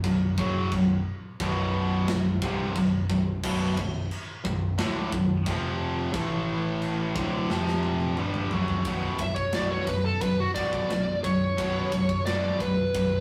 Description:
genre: heavy metal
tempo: 88 BPM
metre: 4/4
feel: straight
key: B minor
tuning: A4 = 440 Hz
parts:
  - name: heavy high-gain guitar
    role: riff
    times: 0.0-13.2 s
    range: B1 to A3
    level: -31 LUFS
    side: equal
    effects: distortion
  - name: tight distorted guitar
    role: riff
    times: 0.0-13.2 s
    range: B1 to A3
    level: -34 LUFS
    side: equal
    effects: distortion
  - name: modern bright picked electric bass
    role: bass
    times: 0.0-13.2 s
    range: B0 to B1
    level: -34 LUFS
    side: equal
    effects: none
  - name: tight metal drum kit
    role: drums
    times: 0.0-13.1 s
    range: china cymbal, crash cymbal, kick drum, ride cymbal, snare drum, toms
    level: -36 LUFS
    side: equal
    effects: none
  - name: smooth overdriven lead guitar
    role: melody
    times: 9.2-13.2 s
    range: F#4 to E5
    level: -30 LUFS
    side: equal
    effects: none
room: moderate stone room reverb, RT60 1.0 s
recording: rough rehearsal-room recording, warm saturation, studio reverb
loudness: -27 LUFS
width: mono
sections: 0.0-8.9 A section; 8.9-13.2 B section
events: half time 0.0-8.9; drum fill 7.5-8.9; lead electric guitar solo 8.9-13.2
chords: 0.0 Bm; 5.5 F5; 6.1 A5; 7.2 D5; 7.5 F5; 8.2 Dadd11; 8.9 Bm

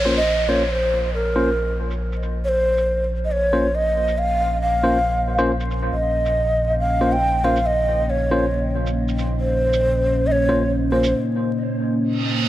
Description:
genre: deep dubstep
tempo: 138 BPM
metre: 4/4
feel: half-time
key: Bb minor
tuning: A4 = 440 Hz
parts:
  - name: breathy mellow low ney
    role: melody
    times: 0.0-11.1 s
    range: Bb4 to G5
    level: -21 LUFS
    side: right 1 dB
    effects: dub echo
  - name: deep dark ambient pad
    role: sustained chords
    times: 2.9-12.5 s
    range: Bb3 to Eb5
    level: -25 LUFS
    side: equal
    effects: chorus, built-in reverb
  - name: saturated sub bass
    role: bass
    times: 0.0-11.1 s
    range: Bb1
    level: -24 LUFS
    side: equal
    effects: none
  - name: downlifter and reverse cymbal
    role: sound effects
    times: 0.0-2.4, 12.1-12.5 s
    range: none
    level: -28 LUFS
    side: right 2 dB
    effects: none
  - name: tine electric piano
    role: stabs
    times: 0.1-11.1 s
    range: Bb3 to C5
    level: -24 LUFS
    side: left 1 dB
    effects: low-pass filter, dub echo
  - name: shaker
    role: drums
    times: 0.6-11.1 s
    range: none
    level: -35 LUFS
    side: right 5 dB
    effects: low-pass filter on hats, low-pass filter on snare, low-pass filter on perc, low-pass filter on cymbals, low-pass filter on room
room: light reverb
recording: vinyl crackle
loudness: -18 LUFS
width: side -14 dB against mid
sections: 0.0-12.5 A section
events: filter sweep on tine electric piano 0.0-12.5; filter sweep on ambient pad 0.0-12.5; break 11.1-12.5; reverse cymbal 12.1-12.5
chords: 0.0 Bbm

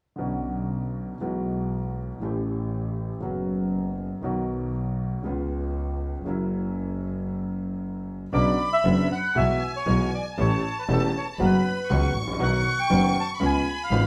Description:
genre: tango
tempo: 118 BPM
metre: 4/4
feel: rubato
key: B minor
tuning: A4 = 444 Hz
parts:
  - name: warm grand piano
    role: accompaniment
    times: 0.2-14.1 s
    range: E1 to G4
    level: -30 LUFS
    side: equal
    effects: none
  - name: warm double bass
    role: bass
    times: 0.2-14.1 s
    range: E1 to C#2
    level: -30 LUFS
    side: equal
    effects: none
  - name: bandoneon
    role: melody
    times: 8.3-14.1 s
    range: A4 to A5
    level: -29 LUFS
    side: equal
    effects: none
  - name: clear symphonic violin section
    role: second line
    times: 8.3-14.1 s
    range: G#5 to C#6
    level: -35 LUFS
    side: equal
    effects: none
room: moderate studio reverb, RT60 0.7 s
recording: band playing live in one room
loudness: -26 LUFS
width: mono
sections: 0.2-8.3 A section; 8.3-14.1 B section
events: none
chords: 0.2 Bmadd9; 1.2 Eadd9/B; 2.2 A7; 3.2 F#sus4; 4.2 B; 5.3 C#7; 6.3 F#7; 8.3 Bmadd9; 9.4 Eadd9/B; 10.4 A7; 11.4 F#sus4; 12.4 B; 13.4 C#7

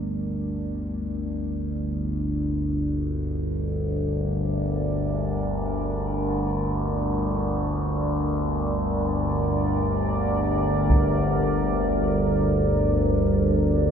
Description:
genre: dark ambient drone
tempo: free time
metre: none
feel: none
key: unclear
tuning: A4 = 440 Hz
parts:
  - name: deep dark ambient pad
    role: sustained chords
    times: 0.0-13.9 s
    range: G3 to D5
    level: -27 LUFS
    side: right 2 dB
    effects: chorus, built-in reverb
  - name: overtone-sweeping drone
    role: drone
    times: 0.0-13.9 s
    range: G1 to D2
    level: -24 LUFS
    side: left 1 dB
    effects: chorus, built-in reverb
  - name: taiko ensemble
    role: percussion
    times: 10.9-11.1 s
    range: none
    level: -26 LUFS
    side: equal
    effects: none
room: wet cathedral reverb, RT60 4.8 s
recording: nothing above 10.9 kHz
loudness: -22 LUFS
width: side -7 dB against mid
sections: 0.0-13.9 A section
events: fade-in on synth drone 0.0-13.9; fade-in on ambient pad 0.0-13.9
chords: 0.0 Gm

